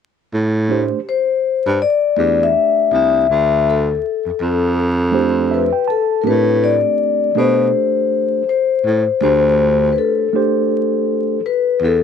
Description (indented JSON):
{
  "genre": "hip hop, jazz-hop",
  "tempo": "81 BPM",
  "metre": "4/4",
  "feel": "swing 60% on 16ths",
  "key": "A minor",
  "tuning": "A4 = 440 Hz",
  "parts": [
    { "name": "breathy baritone saxophone", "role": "bass", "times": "0.3-12.0 s", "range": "C2 to B2", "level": "-18 LUFS", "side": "right 1 dB", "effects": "none" },
    { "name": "mellow tine electric piano", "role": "accompaniment", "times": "0.7-11.4 s", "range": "A3 to A5", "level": "-20 LUFS", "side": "right 10 dB", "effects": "medium stereo tremolo" },
    { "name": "vibraphone with soft mallets", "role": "melody", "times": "1.1-12.0 s", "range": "A4 to E5", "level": "-15 LUFS", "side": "left 8 dB", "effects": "none" }
  ],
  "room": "moderate spring reverb, RT60 2.1 s",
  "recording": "1960s-style stereo with parts hard left and right, vinyl crackle",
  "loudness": "-14 LUFS",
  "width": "side -7 dB against mid",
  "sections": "0.3-6.3 A section; 6.3-12.0 B section",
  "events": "tine electric piano fill 5.1-6.3",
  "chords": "0.3 Am7; 3.3 Dm7; 6.3 Am7; 9.2 D5"
}